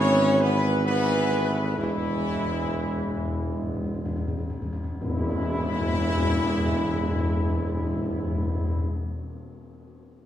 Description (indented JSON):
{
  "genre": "classical, ceremonial fanfare",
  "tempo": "50-71 BPM",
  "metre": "3/4",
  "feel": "straight",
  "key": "E major",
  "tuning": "A4 = 438 Hz",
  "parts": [
    { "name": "mellow trumpet section", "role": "melody", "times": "0.0-8.8 s", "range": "E4 to C#5", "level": "-29 LUFS", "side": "equal", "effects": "none" },
    { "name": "warm French horn section", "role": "sustained chords", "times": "0.0-8.8 s", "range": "E3 to E4", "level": "-32 LUFS", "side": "left 3 dB", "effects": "none" },
    { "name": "warm trombone section", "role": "sustained chords", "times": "0.0-8.8 s", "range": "E3 to B3", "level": "-31 LUFS", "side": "right 1 dB", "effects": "none" },
    { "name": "mellow tuba", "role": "bass", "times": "0.0-8.8 s", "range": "E1 to G#1", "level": "-28 LUFS", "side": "right 1 dB", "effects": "none" },
    { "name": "timpani", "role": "percussion", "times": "1.8-8.9 s", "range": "E2", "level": "-29 LUFS", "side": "left 1 dB", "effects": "none" },
    { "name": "tam-tam", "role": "percussion", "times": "5.0-8.8 s", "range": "none", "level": "-36 LUFS", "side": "left 3 dB", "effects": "none" }
  ],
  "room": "wet recital hall reverb, RT60 1.5 s",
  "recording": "recorded in a church or concert hall",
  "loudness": "-23 LUFS",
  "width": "side -11 dB against mid",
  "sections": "0.0-5.0 A section; 5.0-8.5 B section",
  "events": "slowing down 0.0-5.0; timpani fill 1.8-5.0; band accent 5.0-6.2",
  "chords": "0.0 E/G#; 1.8 E"
}